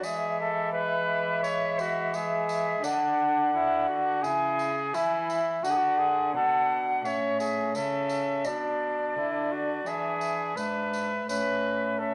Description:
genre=classical, renaissance-style consort dance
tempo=85 BPM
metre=4/4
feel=straight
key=unclear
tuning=A4 = 444 Hz
part: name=warm cornet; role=melody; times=0.0-12.1 s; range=D4 to C#5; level=-33 LUFS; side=equal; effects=none
part: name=mellow alto recorder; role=second line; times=0.0-12.1 s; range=D5 to G#5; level=-31 LUFS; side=equal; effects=none
part: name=mellow bassoon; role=accompaniment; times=0.0-12.1 s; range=G#3 to E4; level=-36 LUFS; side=equal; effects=none
part: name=rich cello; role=bass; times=0.0-12.1 s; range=G#2 to E3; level=-37 LUFS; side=equal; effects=none
part: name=tambourine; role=percussion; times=0.0-11.6 s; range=none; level=-48 LUFS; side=equal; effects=none
room=wet stone room reverb, RT60 1.1 s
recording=none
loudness=-28 LUFS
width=mono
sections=0.0-12.1 A section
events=none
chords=0.0 E; 2.8 D; 4.2 C#m; 5.6 D; 7.0 A; 8.5 Bm; 9.9 E7; 11.3 A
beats=| 0.04 0.74 1.44 2.14 | 2.84 3.54 4.24 4.94 | 5.64 6.35 7.05 7.75 | 8.46 9.16 9.86 10.57 | 11.29 12.00

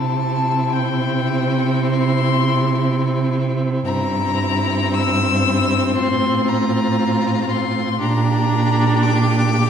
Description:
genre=classical, slow romantic movement for string quartet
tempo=58 BPM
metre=4/4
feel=rubato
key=C major, F major from 3.9 s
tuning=A4 = 441 Hz
part: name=rich violin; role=melody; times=0.0-9.7 s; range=G5 to E6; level=-22 LUFS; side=left 5 dB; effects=none
part: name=clear violin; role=second line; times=0.0-9.7 s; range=E4 to G4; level=-27 LUFS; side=left 3 dB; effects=none
part: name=clear viola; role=accompaniment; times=0.0-9.7 s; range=C4 to D4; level=-22 LUFS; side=left 1 dB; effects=none
part: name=rich cello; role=bass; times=0.0-9.7 s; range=G2 to C3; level=-19 LUFS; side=right 3 dB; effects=none
room=wet concert hall reverb, RT60 2.0 s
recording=heard from further back in the room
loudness=-16 LUFS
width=side -8 dB against mid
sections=0.0-9.7 A section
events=none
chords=0.0 C; 3.9 C7/G; 6.0 F/A; 8.0 Gm/Bb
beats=0.74 1.82 2.83 | 3.85 4.93 5.95 6.97 | 7.99 9.02

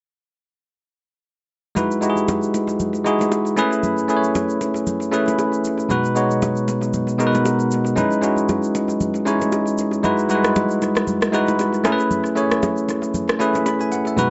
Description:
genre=amapiano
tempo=116 BPM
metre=4/4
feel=swing 58% on 16ths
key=unclear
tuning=A4 = 441 Hz
part: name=bell-like tine electric piano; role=accompaniment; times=1.8-14.3 s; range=B2 to B5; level=-20 LUFS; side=equal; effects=none
part: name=electronic shaker and rim click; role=drums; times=1.8-14.3 s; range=none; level=-30 LUFS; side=equal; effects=tape echo
part: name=congas and bongos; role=percussion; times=1.8-14.3 s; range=none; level=-30 LUFS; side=equal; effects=tape echo
room=light reverb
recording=echo-heavy mix, nothing above 7.9 kHz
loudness=-20 LUFS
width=mono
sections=1.8-14.3 A section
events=none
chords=1.8 Emaj7; 3.6 Amaj9; 5.9 G#m7/B; 8.0 C#m9; 10.0 Emaj7; 11.8 Amaj9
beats=| 1.76 2.28 2.80 3.31 | 3.83 4.35 4.87 5.38 | 5.90 6.42 6.94 7.45 | 7.97 8.49 9.01 9.52 | 10.04 10.56 11.07 11.59 | 12.11 12.62 13.14 13.66 | 14.18

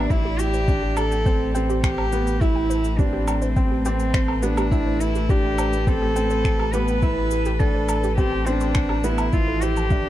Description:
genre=piano and strings electronica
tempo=104 BPM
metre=4/4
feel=straight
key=unclear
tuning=A4 = 436 Hz
part: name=warm cello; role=melody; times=0.0-10.1 s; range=C4 to B4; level=-26 LUFS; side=equal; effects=ping-pong delay
part: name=dark studio string section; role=sustained chords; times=0.0-10.1 s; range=F3 to E5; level=-32 LUFS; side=left 1 dB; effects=sidechain pumping
part: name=warbly dusty pluck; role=arpeggios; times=0.0-10.0 s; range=G4 to C6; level=-33 LUFS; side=right 2 dB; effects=chorus, sidechain pumping, ping-pong delay
part: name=clear upright piano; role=riff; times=0.0-10.1 s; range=B3 to E4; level=-27 LUFS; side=right 2 dB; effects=ping-pong delay
part: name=warm sub bass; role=bass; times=0.0-10.1 s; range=A1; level=-25 LUFS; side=equal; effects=sidechain pumping
part: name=electronic kick drum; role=drums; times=0.1-10.0 s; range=none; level=-22 LUFS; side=equal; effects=overdrive
part: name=electronic shaker, woodblock and finger snaps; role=drums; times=0.1-10.0 s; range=none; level=-31 LUFS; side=right 1 dB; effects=overdrive
room=light reverb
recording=dark, warm production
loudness=-19 LUFS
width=side -13 dB against mid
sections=0.0-10.1 A section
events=none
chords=0.0 Cadd9/A; 9.3 Fmaj7/A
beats=| 0.10 0.68 1.26 1.83 | 2.41 2.99 3.56 4.14 | 4.72 5.29 5.87 6.45 | 7.03 7.60 8.18 8.76 | 9.33 9.91

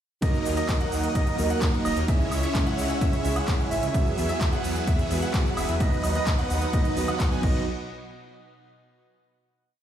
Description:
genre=EDM, festival progressive house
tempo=129 BPM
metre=4/4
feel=straight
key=unclear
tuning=A4 = 440 Hz
part: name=felt-muted upright piano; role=accompaniment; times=0.2-7.7 s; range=C#3 to A#4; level=-32 LUFS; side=right 2 dB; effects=sidechain pumping, digital delay
part: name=lush unison pad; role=sustained chords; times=0.2-7.6 s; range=B2 to E6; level=-38 LUFS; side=equal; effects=chorus, sidechain pumping
part: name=bright grand piano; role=arpeggios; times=0.2-7.6 s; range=D#5 to G#5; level=-33 LUFS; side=right 3 dB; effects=sidechain pumping, digital delay
part: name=supersaw chords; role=riff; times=0.2-7.6 s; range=F#3 to G#5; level=-29 LUFS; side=right 1 dB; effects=phaser, sidechain pumping, digital delay
part: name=wide detuned saw bass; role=bass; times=0.2-7.6 s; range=D#1 to E2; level=-30 LUFS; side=left 1 dB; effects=chorus, sidechain pumping
part: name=big-room dance drum kit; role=drums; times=0.2-7.5 s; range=crash cymbal, handclaps, hi-hat, shaker, woodblock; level=-35 LUFS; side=equal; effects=none
part: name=electronic kick drum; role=drums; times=0.2-7.5 s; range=none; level=-25 LUFS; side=equal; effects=none
room=light reverb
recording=played on a big sound system in a bare room, stone room reverb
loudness=-22 LUFS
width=side -10 dB against mid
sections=0.2-7.7 drop; 7.7-9.5 final hit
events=drop 0.2-7.7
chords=0.2 D#m; 2.1 C#m; 3.9 Eadd9; 5.8 B/D#; 7.4 B; 7.7 N.C.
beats=| 0.22 0.69 1.15 1.62 | 2.08 2.55 3.01 3.48 | 3.94 4.41 4.87 5.34 | 5.80 6.27 6.73 7.20 | 7.66

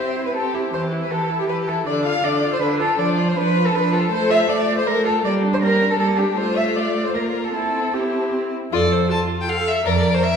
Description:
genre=quick classical-period movement for string quartet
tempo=159 BPM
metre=3/4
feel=straight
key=F major from 4.1 s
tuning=A4 = 440 Hz
part: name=warm violin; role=melody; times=0.0-10.0 s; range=F4 to F5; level=-25 LUFS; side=left 7 dB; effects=none
part: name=rich violin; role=second line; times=0.0-10.4 s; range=Bb3 to A5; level=-25 LUFS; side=left 2 dB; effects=none
part: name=warm viola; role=accompaniment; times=0.0-10.4 s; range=D3 to Bb4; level=-22 LUFS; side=right 1 dB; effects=none
part: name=rich cello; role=bass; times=0.0-10.2 s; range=F2 to F5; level=-22 LUFS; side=right 2 dB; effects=none
room=wet recital hall reverb, RT60 1.6 s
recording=recorded in a church or concert hall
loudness=-17 LUFS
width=side -6 dB against mid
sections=0.0-8.7 A section; 8.7-10.4 B section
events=none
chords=0.0 C; 0.7 C/E (rootless); 1.9 Dm; 3.0 Dm/F; 4.1 F/A; 5.2 Gm; 6.4 F/A; 7.1 Fadd11/Bb; 7.5 C; 8.7 F; 9.9 Bbadd9/F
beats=0.35 | 0.73 1.11 1.49 | 1.87 2.24 2.62 | 2.99 3.37 3.75 | 4.12 4.49 4.87 | 5.25 5.62 6.00 | 6.38 6.76 7.15 | 7.54 7.94 8.33 | 8.72 9.11 9.49 | 9.86 10.23

